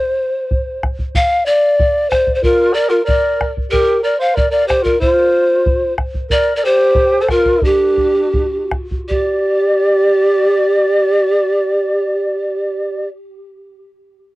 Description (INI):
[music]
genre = andean folk, Andean ensemble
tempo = 74-93 BPM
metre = 2/4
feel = straight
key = G minor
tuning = A4 = 440 Hz
[part]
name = breathy mellow pan flute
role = melody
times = 0.0-13.1 s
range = G4 to F5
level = -14 LUFS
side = equal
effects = cassette tape, tape echo
[part]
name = bombo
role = percussion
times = 0.5-9.5 s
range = none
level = -19 LUFS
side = equal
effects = none
[part]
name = reedy large quena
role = second line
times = 2.4-13.1 s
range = D4 to D5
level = -18 LUFS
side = equal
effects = cassette tape
[sound]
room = moderate booth ambience, RT60 0.2 s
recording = home recording on cassette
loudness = -12 LUFS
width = side -18 dB against mid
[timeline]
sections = 0.0-9.1 A section; 9.1-12.3 B section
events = slowing down 6.3-9.1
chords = none